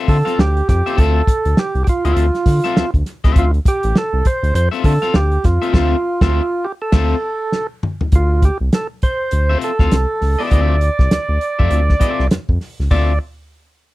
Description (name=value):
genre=funk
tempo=101 BPM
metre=4/4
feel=swing 60% on 16ths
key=D minor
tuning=A4 = 440 Hz
part: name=electric guitar at the edge of break-up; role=accompaniment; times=0.0-13.1 s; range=C4 to F5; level=-22 LUFS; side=left 9 dB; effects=none
part: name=percussive tonewheel organ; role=melody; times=0.1-13.2 s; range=F4 to D5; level=-20 LUFS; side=right 2 dB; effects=overdrive
part: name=round analog bass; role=bass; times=0.1-13.2 s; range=A1 to D3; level=-16 LUFS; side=equal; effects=none
part: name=warm soul drum kit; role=drums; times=0.1-13.1 s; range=crash cymbal, hi-hat, kick drum, snare drum, toms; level=-15 LUFS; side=equal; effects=none
room=little or no reverb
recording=none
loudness=-14 LUFS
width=side -18 dB against mid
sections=0.0-8.1 A section; 8.1-12.9 B section; 12.9-13.9 C section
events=band accent 5.7-8.1; drum fill 7.5-8.1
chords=0.0 Dm9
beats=0.38 | 0.98 1.57 2.17 2.76 | 3.36 3.95 4.55 5.14 | 5.74 6.33 6.93 7.53 | 8.12 8.72 9.32 9.92 | 10.52 11.11 11.71 12.31 | 12.91